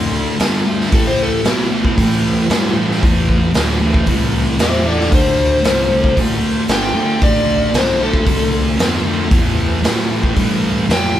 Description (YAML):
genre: blues rock power trio and southern rock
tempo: 114 BPM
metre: 4/4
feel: straight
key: A minor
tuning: A4 = 445 Hz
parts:
  - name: bright tonewheel organ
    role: sustained chords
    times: 0.0-11.2 s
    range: C4 to C5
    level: -31 LUFS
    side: right 3 dB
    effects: none
  - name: thick fuzz guitar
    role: riff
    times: 0.0-11.2 s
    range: A2 to B3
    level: -17 LUFS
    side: equal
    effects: distortion
  - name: fuzz fingered electric bass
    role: bass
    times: 0.0-11.2 s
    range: G1 to B2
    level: -21 LUFS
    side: equal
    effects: overdrive
  - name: raw garage drum kit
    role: drums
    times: 0.4-11.0 s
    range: hi-hat, kick drum, snare drum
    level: -18 LUFS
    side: equal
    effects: none
  - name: overdriven slide guitar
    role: melody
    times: 0.9-11.2 s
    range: E4 to G5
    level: -18 LUFS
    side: left 2 dB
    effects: none
room: light reverb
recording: band playing live in one room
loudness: -13 LUFS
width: side -12 dB against mid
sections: 0.0-11.2 A section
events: none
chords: 0.0 Dm7; 0.9 Am7; 5.1 Dm7; 9.3 Am7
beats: 0.40 | 0.92 1.45 1.97 2.50 | 3.02 3.55 4.07 4.60 | 5.12 5.65 6.17 6.70 | 7.22 7.75 8.27 8.80 | 9.32 9.85 10.37 10.90